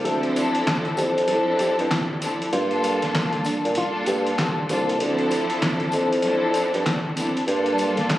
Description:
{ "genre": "hip hop, boom-bap hip-hop", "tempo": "97 BPM", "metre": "4/4", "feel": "swing 61% on 16ths", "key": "D minor", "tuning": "A4 = 440 Hz", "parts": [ { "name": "nylon-string guitar", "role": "melody", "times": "0.0-4.4 s", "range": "D4 to A4", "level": "-30 LUFS", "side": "equal", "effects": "high-pass filter, low-pass filter, digital delay" }, { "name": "warm studio string section", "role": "accompaniment", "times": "0.0-8.2 s", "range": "F3 to A4", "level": "-24 LUFS", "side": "equal", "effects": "high-pass filter, low-pass filter" }, { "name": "mellow bassoon", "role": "bass", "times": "0.1-8.0 s", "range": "C2 to Bb2", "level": "-22 LUFS", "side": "equal", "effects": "none" }, { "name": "trip hop sampler-style drum kit", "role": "drums", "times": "0.1-8.2 s", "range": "handclaps, hi-hat, snare drum", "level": "-27 LUFS", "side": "equal", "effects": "none" }, { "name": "tambourine", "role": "percussion", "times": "0.4-8.0 s", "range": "none", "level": "-40 LUFS", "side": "left 1 dB", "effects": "none" } ], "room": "little or no reverb", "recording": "recorded on a phone in the room, club reverb, vinyl crackle", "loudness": "-20 LUFS", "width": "side -14 dB against mid", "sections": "0.1-8.2 A section", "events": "break 0.1-8.2", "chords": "0.1 Dm7; 2.5 Gm7; 5.0 Dm7; 7.5 Gm7" }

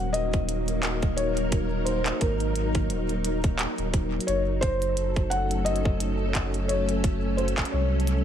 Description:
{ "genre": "IDM", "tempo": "87 BPM", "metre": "4/4", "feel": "swing 56% on 16ths", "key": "Eb dorian", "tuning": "A4 = 440 Hz", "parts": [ { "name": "felt-muted upright piano", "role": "melody", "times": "0.0-8.2 s", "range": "Bb4 to Gb5", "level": "-30 LUFS", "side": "left 2 dB", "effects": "ping-pong delay" }, { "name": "soft string machine", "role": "sustained chords", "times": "0.0-8.2 s", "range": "Gb3 to Bb4", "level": "-29 LUFS", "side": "equal", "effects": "ensemble chorus, sidechain pumping" }, { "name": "warm sub bass", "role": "bass", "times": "0.0-8.2 s", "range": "Eb1 to C2", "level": "-28 LUFS", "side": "equal", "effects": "none" }, { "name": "glitchy drum kit", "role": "drums", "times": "0.1-8.2 s", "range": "handclaps, hi-hat", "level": "-32 LUFS", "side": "right 1 dB", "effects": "small room ambience, digital delay" }, { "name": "electronic kick drum", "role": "drums", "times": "0.3-7.7 s", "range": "none", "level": "-26 LUFS", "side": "equal", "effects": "small room ambience" } ], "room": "light reverb, digital ambience", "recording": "none", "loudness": "-23 LUFS", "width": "side -9 dB against mid", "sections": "0.0-8.2 A section", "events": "none", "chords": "0.0 Ebm; 4.3 Gbm" }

